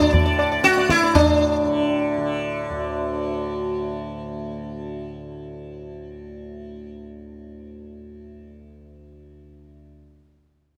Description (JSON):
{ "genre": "indian classical, Hindustani", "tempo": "119 BPM", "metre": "4/4", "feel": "straight", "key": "unclear", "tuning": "A4 = 440 Hz", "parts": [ { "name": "sitar", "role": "melody", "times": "0.0-4.6 s", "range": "D4 to D5", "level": "-21 LUFS", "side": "equal", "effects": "none" }, { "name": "tanpura", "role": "drone", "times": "0.0-9.8 s", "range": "D2 to D3", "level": "-31 LUFS", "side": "equal", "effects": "none" }, { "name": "tabla", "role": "percussion", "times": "0.0-1.3 s", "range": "none", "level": "-23 LUFS", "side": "equal", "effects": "none" } ], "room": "little or no reverb", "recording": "close, detailed microphones", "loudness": "-21 LUFS", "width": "mono", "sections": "0.0-1.1 A section; 1.1-3.2 B section", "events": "none", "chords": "none" }